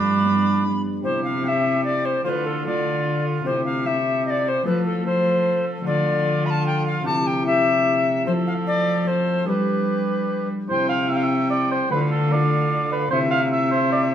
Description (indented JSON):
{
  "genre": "classical, renaissance-style consort dance",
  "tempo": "149 BPM",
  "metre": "3/4",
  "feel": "straight",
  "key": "unclear",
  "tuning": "A4 = 444 Hz",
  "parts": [
    { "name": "tenor recorder", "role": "melody", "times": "0.0-14.1 s", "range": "A4 to B5", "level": "-23 LUFS", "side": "left 3 dB", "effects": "none" },
    { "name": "mellow cor anglais", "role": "second line", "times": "0.0-14.0 s", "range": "D4 to F5", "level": "-26 LUFS", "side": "right 3 dB", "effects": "none" },
    { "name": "concert harp", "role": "accompaniment", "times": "0.0-14.1 s", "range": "G2 to A4", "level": "-25 LUFS", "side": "left 1 dB", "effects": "none" },
    { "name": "rich cello", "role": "bass", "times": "0.0-14.1 s", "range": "G2 to G3", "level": "-25 LUFS", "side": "right 1 dB", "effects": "none" }
  ],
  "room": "wet stone room reverb, RT60 1.1 s",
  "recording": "heard from further back in the room",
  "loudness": "-19 LUFS",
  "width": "side -9 dB against mid",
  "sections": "0.0-1.0 A section; 1.0-10.7 B section; 10.7-14.1 B section",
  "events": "none",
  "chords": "0.0 G; 1.0 C; 2.3 Dm; 3.5 C; 4.7 F; 5.9 Dm; 7.1 C; 8.3 F; 9.5 G; 10.7 C; 11.9 Dm; 13.1 C"
}